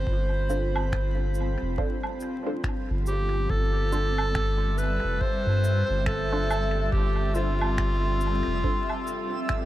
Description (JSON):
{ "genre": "ambient dub", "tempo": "70 BPM", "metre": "4/4", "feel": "swing 60% on 16ths", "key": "G mixolydian", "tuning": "A4 = 440 Hz", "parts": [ { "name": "bright clarinet", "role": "melody", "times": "0.0-9.7 s", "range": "F4 to C5", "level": "-30 LUFS", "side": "equal", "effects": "dub echo" }, { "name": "granular cloud pad", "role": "sustained chords", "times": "0.0-9.7 s", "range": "G3 to B5", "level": "-34 LUFS", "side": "equal", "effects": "built-in reverb" }, { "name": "soft dub sub bass", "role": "bass", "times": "0.0-8.6 s", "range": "F1 to G2", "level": "-26 LUFS", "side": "equal", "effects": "none" }, { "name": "electronic kick drum", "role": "drums", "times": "0.1-9.7 s", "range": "none", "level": "-31 LUFS", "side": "equal", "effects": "overdrive" }, { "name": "filtered dub chord stab", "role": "stabs", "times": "0.5-8.8 s", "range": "D4 to C5", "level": "-37 LUFS", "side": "right 1 dB", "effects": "none" }, { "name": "cabasa, woodblock and finger snaps", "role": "drums", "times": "0.5-9.7 s", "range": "none", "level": "-37 LUFS", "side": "right 3 dB", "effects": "dub echo" }, { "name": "backwards swelling texture", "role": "texture", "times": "4.8-9.7 s", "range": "E5", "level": "-37 LUFS", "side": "right 1 dB", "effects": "built-in reverb" } ], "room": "light reverb", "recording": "vinyl crackle", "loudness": "-24 LUFS", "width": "side -14 dB against mid", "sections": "0.0-3.5 A section; 3.5-9.7 B section", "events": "filter sweep on synth stab 0.0-3.5", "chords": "0.0 G7sus4" }